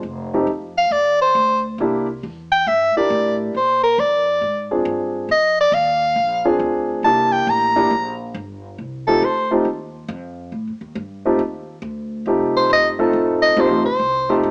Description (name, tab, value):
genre	jazz, small-group swing and bop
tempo	138 BPM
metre	4/4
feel	swing 65% on 8ths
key	F mixolydian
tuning	A4 = 440 Hz
part	upright bass	bass	0.0-14.5 s	F1 to Bb2	-30 LUFS	equal	none
part	warm grand piano	accompaniment	0.3-14.5 s	A3 to Bb4	-18 LUFS	equal	none
part	clear soprano saxophone	melody	0.8-9.5, 12.6-14.4 s	A4 to Bb5	-15 LUFS	equal	plate reverb
room	moderate large studio reverb, RT60 0.9 s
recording	small speaker sound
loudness	-15 LUFS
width	side -33 dB against mid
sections	0.0-8.8 A section; 8.8-14.5 B section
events	soprano saxophone solo 8.8-14.5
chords	0.0 F7(no3); 1.8 C9; 3.5 Bb9; 5.3 Ebsus2; 6.2 Bb9; 7.0 C9; 8.8 F9